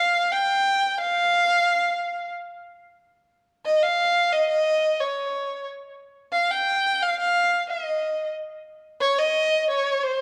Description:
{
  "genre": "arabic",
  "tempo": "90 BPM",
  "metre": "4/4",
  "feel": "straight",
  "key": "unclear",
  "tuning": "A4 = 440 Hz",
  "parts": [
    { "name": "dark violin", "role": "solo", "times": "0.0-10.2 s", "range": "C5 to G5", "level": "-23 LUFS", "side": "equal", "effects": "analog delay" }
  ],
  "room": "light reverb",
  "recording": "close, detailed microphones",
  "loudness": "-23 LUFS",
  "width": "mono",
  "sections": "0.0-10.2 A section",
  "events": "none",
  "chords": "none",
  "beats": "0.31 | 0.98 1.65 2.32 2.99 | 3.66 4.33 5.00 5.66 | 6.33 7.00 7.67 8.34 | 9.01 9.68"
}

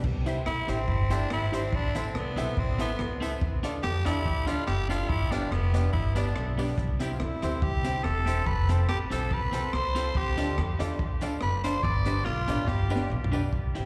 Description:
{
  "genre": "ska",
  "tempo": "142 BPM",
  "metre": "4/4",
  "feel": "swing 54% on 8ths",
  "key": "C major",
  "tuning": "A4 = 436 Hz",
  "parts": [
    { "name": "upright bass", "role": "bass", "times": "0.0-13.9 s", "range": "E1 to F2", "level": "-31 LUFS", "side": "equal", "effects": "none" },
    { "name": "crunchy breakbeat drum kit", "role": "drums", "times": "0.0-13.8 s", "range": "crash cymbal, hi-hat, kick drum, rim click, snare drum, toms", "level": "-36 LUFS", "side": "equal", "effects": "none" },
    { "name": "electric guitar at the edge of break-up", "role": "accompaniment", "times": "0.3-13.9 s", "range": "B3 to C5", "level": "-40 LUFS", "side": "equal", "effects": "phaser, dub echo, plate reverb" },
    { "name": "bright upright piano", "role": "stabs", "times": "0.3-13.9 s", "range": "C4 to E5", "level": "-38 LUFS", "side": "equal", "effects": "plate reverb, slapback echo" },
    { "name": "tambourine", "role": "percussion", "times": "0.3-13.4 s", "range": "none", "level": "-54 LUFS", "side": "equal", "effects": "none" },
    { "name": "raspy tenor saxophone", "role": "melody", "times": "0.5-13.1 s", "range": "B3 to D5", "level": "-34 LUFS", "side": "equal", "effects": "dub echo, plate reverb, slapback echo" }
  ],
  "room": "light reverb",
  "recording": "live gig heard through the venue's PA, recital hall reverb",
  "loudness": "-28 LUFS",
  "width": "mono",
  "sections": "0.0-13.5 A section",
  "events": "tenor saxophone solo 0.0-13.5; drum fill 12.7-13.5",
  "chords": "0.0 C; 1.7 Am; 3.4 Dm; 5.1 G; 6.8 C; 8.5 F; 10.2 Dm; 11.8 G",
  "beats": "| 0.04 0.46 0.88 1.30 | 1.73 2.15 2.57 2.99 | 3.41 3.83 4.25 4.67 | 5.09 5.52 5.94 6.36 | 6.78 7.20 7.62 8.04 | 8.46 8.89 9.31 9.73 | 10.15 10.57 10.99 11.42 | 11.84 12.26 12.68 13.11 | 13.53"
}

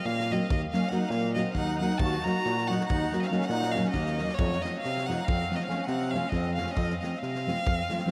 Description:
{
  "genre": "balkan folk, Balkan wedding band",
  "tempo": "277 BPM (eighths)",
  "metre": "11/8",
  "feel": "straight",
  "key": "unclear",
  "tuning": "A4 = 437 Hz",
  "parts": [
    { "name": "rich violin", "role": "melody", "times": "0.0-8.1 s", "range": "Db5 to Bb5", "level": "-34 LUFS", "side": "equal", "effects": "none" },
    { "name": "musette accordion", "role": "second line", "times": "0.0-8.1 s", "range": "A3 to Gb4", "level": "-38 LUFS", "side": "equal", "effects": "none" },
    { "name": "barky tine electric piano", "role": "bass", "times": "0.1-7.8 s", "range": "Eb2 to C3", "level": "-34 LUFS", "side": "equal", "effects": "none" },
    { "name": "loose indie drum kit", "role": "percussion", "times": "0.1-8.1 s", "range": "kick drum, snare drum", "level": "-37 LUFS", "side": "equal", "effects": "none" },
    { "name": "nylon-string guitar", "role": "accompaniment", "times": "0.3-8.1 s", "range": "F3 to Gb4", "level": "-34 LUFS", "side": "equal", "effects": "none" }
  ],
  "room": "wet huge ambient reverb, RT60 7.7 s",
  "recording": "in a vast, echoing space",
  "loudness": "-28 LUFS",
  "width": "mono",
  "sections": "0.0-8.1 A section",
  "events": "none",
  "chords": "0.0 Ebm; 4.4 F",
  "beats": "0.05 0.26 0.48 0.70 0.92 1.13 1.35 1.57 1.79 | 2.00 2.22 2.44 2.66 2.87 3.09 3.31 3.52 3.74 3.96 4.17 | 4.39 4.61 4.83 5.04 5.26 5.48 5.69 5.91 6.12 6.34 6.56 | 6.77 6.99 7.21 7.42 7.64 7.85 8.07"
}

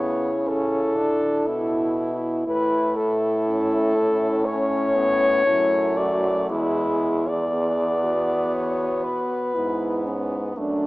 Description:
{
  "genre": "classical, lyrical piece for horn quartet",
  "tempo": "60 BPM",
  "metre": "4/4",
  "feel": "rubato",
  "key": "A major",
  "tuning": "A4 = 440 Hz",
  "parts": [
    { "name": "clear French horn", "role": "melody", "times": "0.0-10.9 s", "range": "D4 to D5", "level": "-23 LUFS", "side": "left 1 dB", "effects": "none" },
    { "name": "mellow French horn", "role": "second line", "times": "0.0-10.9 s", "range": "C#4 to G#4", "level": "-29 LUFS", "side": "right 2 dB", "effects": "none" },
    { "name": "clear French horn", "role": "accompaniment", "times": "0.0-10.9 s", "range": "G#3 to E4", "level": "-27 LUFS", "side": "equal", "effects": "none" },
    { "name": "clear French horn", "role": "bass", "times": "0.0-10.9 s", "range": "E2 to C#3", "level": "-28 LUFS", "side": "equal", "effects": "none" }
  ],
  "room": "moderate concert hall reverb, RT60 2.4 s",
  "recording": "small speaker sound",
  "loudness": "-20 LUFS",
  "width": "side -20 dB against mid",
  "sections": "0.0-10.9 A section",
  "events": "none",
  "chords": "0.0 A/C#; 2.5 A; 6.5 E",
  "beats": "0.48 1.47 | 2.47 3.46 4.45 5.47 | 6.51 7.54 8.55 9.55 | 10.58"
}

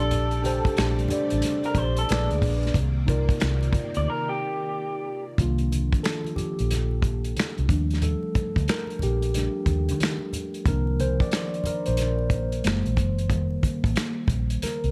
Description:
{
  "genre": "R&B, neo-soul",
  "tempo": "91 BPM",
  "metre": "4/4",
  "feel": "swing 64% on 16ths",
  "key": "C dorian",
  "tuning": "A4 = 440 Hz",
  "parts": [
    { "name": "electric guitar through a small old amp", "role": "second line", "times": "0.0-5.2 s", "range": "G4 to D5", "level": "-32 LUFS", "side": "equal", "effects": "none" },
    { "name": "mellow tine electric piano", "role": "accompaniment", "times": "0.0-14.9 s", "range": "Eb3 to D5", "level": "-31 LUFS", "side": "equal", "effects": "phaser" },
    { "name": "string machine, violins", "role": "sustained chords", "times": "0.0-5.4 s", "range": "Cb3 to D5", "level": "-38 LUFS", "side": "equal", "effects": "ensemble chorus" },
    { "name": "vintage muted fingered electric bass", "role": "bass", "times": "0.0-14.9 s", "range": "F1 to Eb3", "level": "-28 LUFS", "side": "equal", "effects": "none" },
    { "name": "warm soul drum kit", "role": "drums", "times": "0.1-14.9 s", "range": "finger snaps, hi-hat, kick drum, snare drum", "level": "-29 LUFS", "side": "equal", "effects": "none" },
    { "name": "congas", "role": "percussion", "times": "0.1-14.8 s", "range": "none", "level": "-37 LUFS", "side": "equal", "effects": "none" }
  ],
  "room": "small room ambience",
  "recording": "none",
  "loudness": "-25 LUFS",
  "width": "mono",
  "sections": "0.0-5.4 A section; 5.4-14.9 B section",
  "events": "break 4.1-5.4; tine electric piano solo 5.4-14.9",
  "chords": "0.0 Bbmaj13; 2.1 Bb7b9; 2.7 Cm9; 5.4 Cm11; 7.7 Ebmaj9#11; 10.7 Cm11; 12.6 F#9; 13.3 F7sus4",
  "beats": "| 0.11 0.77 1.43 2.08 | 2.75 3.40 4.06 4.72 | 5.38 6.04 6.70 7.36 | 8.02 8.68 9.34 10.00 | 10.66 11.32 11.98 12.63 | 13.29 13.95 14.61"
}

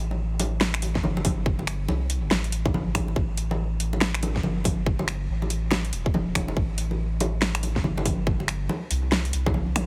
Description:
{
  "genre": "deep dubstep",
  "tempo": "141 BPM",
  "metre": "4/4",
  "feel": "swing 62% on 16ths, half-time",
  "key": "A minor",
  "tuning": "A4 = 437 Hz",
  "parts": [
    { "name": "soft dub sub bass", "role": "bass", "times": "0.0-9.9 s", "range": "E1 to C2", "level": "-30 LUFS", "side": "equal", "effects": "none" },
    { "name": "congas", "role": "percussion", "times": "0.1-9.9 s", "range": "none", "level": "-32 LUFS", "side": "equal", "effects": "dub echo" },
    { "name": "dubstep drum kit", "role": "drums", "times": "0.4-9.9 s", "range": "finger snaps, hi-hat, snare drum, toms", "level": "-29 LUFS", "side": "equal", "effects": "none" },
    { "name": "electronic kick drum", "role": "drums", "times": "1.0-9.5 s", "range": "none", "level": "-29 LUFS", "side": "equal", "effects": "none" }
  ],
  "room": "little or no reverb",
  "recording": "heavily compressed radio sound, multiband compression",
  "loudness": "-26 LUFS",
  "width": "mono",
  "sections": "0.0-9.9 A section",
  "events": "kick drops out 9.5-9.9",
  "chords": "none",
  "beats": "0.18 0.61 1.03 | 1.46 1.89 2.31 2.74 | 3.16 3.59 4.01 4.44 | 4.86 5.29 5.71 6.14 | 6.57 6.99 7.42 7.84 | 8.27 8.69 9.12 9.54"
}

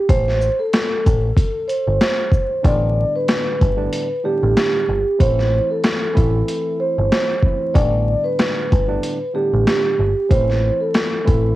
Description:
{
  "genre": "hip hop, boom-bap hip-hop",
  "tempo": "94 BPM",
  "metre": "4/4",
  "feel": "swing 56% on 16ths",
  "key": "unclear",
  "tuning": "A4 = 444 Hz",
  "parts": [
    { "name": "vibraphone with soft mallets", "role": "melody", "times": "0.0-11.6 s", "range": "G4 to D5", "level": "-20 LUFS", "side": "right 1 dB", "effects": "high-pass filter, low-pass filter, analog delay" },
    { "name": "deep dub picked electric bass", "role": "bass", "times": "0.1-11.5 s", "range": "G1 to A1", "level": "-19 LUFS", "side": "equal", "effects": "transformer saturation" },
    { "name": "boom bap sampler-style drum kit", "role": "drums", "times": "0.1-11.4 s", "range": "hi-hat, kick drum, shaker, snare drum", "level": "-18 LUFS", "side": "equal", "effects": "cassette tape" },
    { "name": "tine electric piano", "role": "accompaniment", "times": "2.6-11.6 s", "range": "A2 to E4", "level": "-26 LUFS", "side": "right 4 dB", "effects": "overdrive, high-pass filter, low-pass filter, cassette tape" }
  ],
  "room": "little or no reverb",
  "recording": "home recording on cassette, vinyl crackle",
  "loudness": "-15 LUFS",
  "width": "side -16 dB against mid",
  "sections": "0.0-2.6 A section; 2.6-11.6 B section",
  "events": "none",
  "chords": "0.1 Am; 2.6 G; 5.2 Am; 7.8 G; 10.3 Am",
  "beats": "| 0.09 0.73 1.37 2.01 | 2.65 3.29 3.92 4.56 | 5.20 5.84 6.48 7.12 | 7.75 8.39 9.03 9.67 | 10.31 10.95"
}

